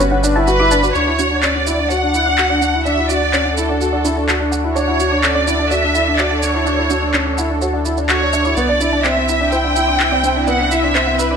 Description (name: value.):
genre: piano and strings electronica.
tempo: 126 BPM.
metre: 4/4.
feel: straight.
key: D major.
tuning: A4 = 439 Hz.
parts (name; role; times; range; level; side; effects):
lush unison pad; sustained chords; 0.0-11.4 s; G3 to F#5; -23 LUFS; equal; chorus, phaser.
soft round pluck; arpeggios; 0.0-11.4 s; D4 to D6; -26 LUFS; right 2 dB; chorus, ping-pong delay.
dark upright piano; riff; 0.0-11.4 s; B3 to F#4; -20 LUFS; left 1 dB; ping-pong delay.
round analog bass; bass; 0.0-11.4 s; G1 to D2; -22 LUFS; equal; none.
electronic shaker and handclaps; drums; 0.0-11.3 s; none; -21 LUFS; equal; none.
rich studio violin section; melody; 0.5-11.4 s; A4 to G5; -17 LUFS; right 1 dB; none.
room: moderate scoring stage reverb, RT60 1.6 s, digital ambience.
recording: none.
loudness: -13 LUFS.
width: side -6 dB against mid.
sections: 1.0-11.4 A section.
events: filter sweep on synth arpeggio sound 1.0-11.4.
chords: 0.0 Gmaj7; 1.0 Dmaj7; 8.6 C.